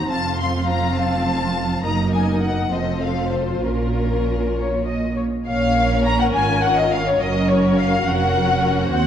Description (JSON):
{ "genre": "quick classical-period movement for string orchestra", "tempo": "64-71 BPM (dotted quarters)", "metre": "6/8", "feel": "rubato", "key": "Bb minor", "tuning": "A4 = 443 Hz", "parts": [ { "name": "warm studio violin section", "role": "melody", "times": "0.0-9.1 s", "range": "F4 to C6", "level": "-26 LUFS", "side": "left 4 dB", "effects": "none" }, { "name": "dark studio violin section", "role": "second line", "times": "0.0-9.1 s", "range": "F4 to Bb5", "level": "-22 LUFS", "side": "left 3 dB", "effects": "none" }, { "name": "warm studio viola section", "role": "accompaniment", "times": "0.0-9.1 s", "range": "Bb3 to C5", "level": "-25 LUFS", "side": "right 1 dB", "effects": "none" }, { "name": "rich studio cello section", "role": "bass", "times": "0.0-9.1 s", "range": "Eb2 to Bb2", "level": "-23 LUFS", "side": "right 2 dB", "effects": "none" }, { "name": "warm studio double bass section", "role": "bass", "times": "0.0-9.1 s", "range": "F1 to Eb2", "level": "-25 LUFS", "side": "right 2 dB", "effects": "none" } ], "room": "wet scoring stage reverb, RT60 1.7 s", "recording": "dark, warm production", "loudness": "-17 LUFS", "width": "side -9 dB against mid", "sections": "0.0-5.5 A section; 5.5-9.1 B section", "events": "none", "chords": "0.1 F; 1.8 Ebm/Gb; 2.7 F; 3.6 Bbm; 7.2 Gb", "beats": "| 0.11 0.97 | 1.83 2.71 | 3.63 4.56 | 5.47 6.34 | 7.20 8.07 | 8.93" }